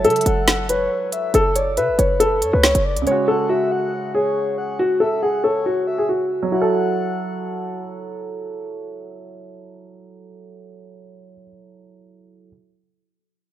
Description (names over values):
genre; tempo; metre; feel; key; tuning
hip hop, drill; 139 BPM; 4/4; half-time; F# minor; A4 = 439 Hz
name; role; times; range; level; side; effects
dark concert grand piano; melody; 0.0-7.8 s; F#4 to C#5; -19 LUFS; left 1 dB; low-pass filter, ping-pong delay
breathy flute-like synth lead; second line; 0.0-7.8 s; B4 to F#5; -26 LUFS; left 3 dB; chorus, ping-pong delay
warm baby grand piano; accompaniment; 0.0-12.5 s; C#3 to A4; -28 LUFS; right 5 dB; low-pass filter
short 808-style bass; bass; 0.0-3.1 s; F#1 to C#3; -22 LUFS; equal; none
drill drum kit; drums; 0.0-3.2 s; hi-hat, snare drum; -20 LUFS; equal; none
room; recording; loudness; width
light reverb, small room ambience; rough home demo mix; -17 LUFS; side -12 dB against mid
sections
0.0-6.5 A section; 6.5-10.0 B section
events
filter sweep 0.0-6.5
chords
0.0 F#m7; 3.1 C#sus4; 6.5 F#m7